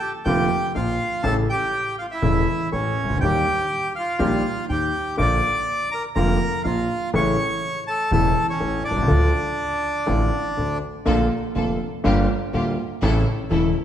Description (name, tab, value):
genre	tango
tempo	122 BPM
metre	4/4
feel	rubato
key	unclear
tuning	A4 = 439 Hz
part	bandoneon	melody	0.0-10.8 s	C#4 to D6	-23 LUFS	equal	none
part	warm concert grand piano	accompaniment	0.3-13.7 s	E1 to G4	-23 LUFS	left 1 dB	none
part	upright bass	bass	0.3-13.7 s	E1 to Eb2	-25 LUFS	right 1 dB	none
part	rich studio string section	stabs	11.1-13.7 s	Bb3 to A4	-29 LUFS	right 2 dB	none
room	wet recital hall reverb, RT60 1.7 s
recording	recorded in a church or concert hall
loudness	-19 LUFS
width	side -10 dB against mid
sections	0.0-11.1 A section; 11.1-13.8 B section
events	none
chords	0.0 Bb; 1.2 A; 3.2 Eb; 5.2 Bb; 7.1 A; 9.1 Dm; 11.1 Bbmaj7; 12.0 Gm7; 13.0 A